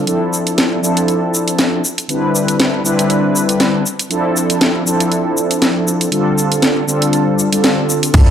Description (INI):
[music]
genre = nu-disco, nu disco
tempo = 119 BPM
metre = 4/4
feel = swing 56% on 16ths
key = D dorian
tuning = A4 = 441 Hz
[part]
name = mellow synth brass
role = accompaniment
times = 0.0-8.3 s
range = D3 to B4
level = -15 LUFS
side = equal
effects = chorus, digital delay
[part]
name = house drum kit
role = drums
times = 0.1-8.3 s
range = cabasa, crash cymbal, hi-hat, snare drum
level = -16 LUFS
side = equal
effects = overdrive
[part]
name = chorused synth bass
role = bass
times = 8.1-8.2 s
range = D2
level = -11 LUFS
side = equal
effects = none
[part]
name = electronic kick drum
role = drums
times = 8.1-8.3 s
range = none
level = -9 LUFS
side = equal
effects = overdrive
[part]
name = sub drop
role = sound effects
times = 8.2-8.3 s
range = none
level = -15 LUFS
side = equal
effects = none
[sound]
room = moderate plate reverb, RT60 1.1 s, digital ambience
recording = none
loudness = -12 LUFS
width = side -9 dB against mid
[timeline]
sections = 0.0-8.1 A section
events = impact 8.1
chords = 0.1 Dm9; 1.8 Cmaj9/D; 3.9 Dm9; 6.1 G9sus4/D